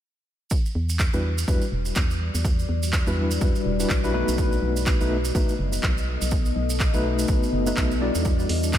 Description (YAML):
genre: deep house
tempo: 124 BPM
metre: 4/4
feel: swing 59% on 16ths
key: E minor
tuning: A4 = 440 Hz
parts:
  - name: deep dark ambient pad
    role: sustained chords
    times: 1.8-8.8 s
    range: G3 to D#5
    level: -30 LUFS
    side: left 2 dB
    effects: chorus, built-in reverb, sidechain pumping
  - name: electronic kick drum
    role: drums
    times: 0.5-8.8 s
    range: none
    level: -24 LUFS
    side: equal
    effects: none
  - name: maracas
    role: percussion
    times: 0.5-8.8 s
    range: none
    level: -34 LUFS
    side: right 6 dB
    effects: none
  - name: organ-like FM bass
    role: bass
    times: 0.8-8.8 s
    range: E1 to E2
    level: -26 LUFS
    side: equal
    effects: sidechain pumping
  - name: punchy analog drum machine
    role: drums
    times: 1.0-8.8 s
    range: handclaps, hi-hat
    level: -32 LUFS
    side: equal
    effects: none
  - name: tine electric piano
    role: stabs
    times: 1.1-8.8 s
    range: G3 to D5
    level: -27 LUFS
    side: left 2 dB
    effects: medium tremolo, ping-pong delay
room: light reverb, digital ambience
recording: none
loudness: -21 LUFS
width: side -11 dB against mid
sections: 0.5-8.8 A section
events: none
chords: 0.5 Em9; 4.1 B7; 8.3 Em9